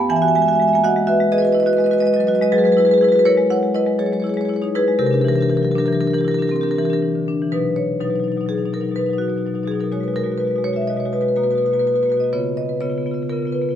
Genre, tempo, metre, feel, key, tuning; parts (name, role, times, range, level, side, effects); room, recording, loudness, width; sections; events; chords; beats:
classical, contemporary piece for solo marimba; 124 BPM; 5/4; rubato; B major; A4 = 440 Hz
marimba with medium mallets; solo; 0.0-13.8 s; B2 to A5; -16 LUFS; equal
moderate recital hall reverb, RT60 1.6 s; close, detailed microphones; -16 LUFS; side -10 dB against mid
0.0-7.5 A section; 7.5-13.8 B section
0.1 Emaj9; 2.5 F#11; 5.0 C9; 7.5 B; 9.9 G#m7/B; 11.4 B5; 12.3 C#7
| 0.12 0.59 1.07 1.55 2.04 | 2.53 3.01 3.49 3.98 4.48 | 4.99 5.50 6.01 6.51 7.01 | 7.51 8.00 8.48 8.96 9.44 | 9.93 10.40 10.89 11.37 11.85 | 12.32 12.80 13.27 13.75